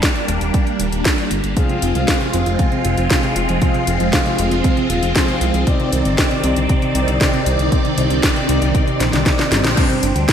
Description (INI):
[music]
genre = italo disco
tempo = 117 BPM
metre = 4/4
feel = straight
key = C minor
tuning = A4 = 440 Hz
[part]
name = phased string machine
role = sustained chords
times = 0.0-10.3 s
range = Eb3 to D5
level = -20 LUFS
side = equal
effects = ensemble chorus, phaser
[part]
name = electronic kick drum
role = drums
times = 0.0-10.3 s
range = none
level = -18 LUFS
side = equal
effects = overdrive, studio reverb
[part]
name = house drum kit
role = drums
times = 0.0-10.3 s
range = crash cymbal, hi-hat, snare drum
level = -21 LUFS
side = equal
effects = overdrive, studio reverb, gated reverb
[part]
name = fat analog bass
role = bass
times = 0.3-10.3 s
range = Eb1 to D2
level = -20 LUFS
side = equal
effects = none
[part]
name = soft round pluck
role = arpeggios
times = 1.6-10.3 s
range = C3 to F4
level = -24 LUFS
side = right 2 dB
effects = chorus, ping-pong delay
[part]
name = analog synth brass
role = stabs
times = 1.6-10.3 s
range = G2 to F5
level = -23 LUFS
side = left 1 dB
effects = chorus, ping-pong delay
[sound]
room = moderate lush hall reverb, RT60 1.8 s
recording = bright 1980s-style digital production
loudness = -14 LUFS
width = side -8 dB against mid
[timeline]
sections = 0.0-9.8 A section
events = drum fill 9.0-9.8; band accent 9.6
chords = 0.0 Eb; 1.6 Fm; 5.7 Cmadd9; 9.8 Gsus4